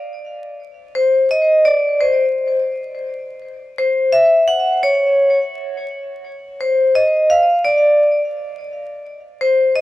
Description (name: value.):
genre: hip hop.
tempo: 85 BPM.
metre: 4/4.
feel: swing 65% on 16ths.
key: unclear.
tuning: A4 = 440 Hz.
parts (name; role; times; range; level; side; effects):
vibraphone with medium hard mallets; solo; 0.9-9.8 s; C5 to F#5; -14 LUFS; left 1 dB; tape echo.
room: moderate plate reverb, RT60 3.0 s.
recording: worn, warbling old tape, cassette tape, vinyl crackle, warbly pitch drift.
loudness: -13 LUFS.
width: side -16 dB against mid.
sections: 0.0-2.7 A section; 2.7-9.8 A section.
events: vibraphone solo 0.0-2.7, 2.7-9.8.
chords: none.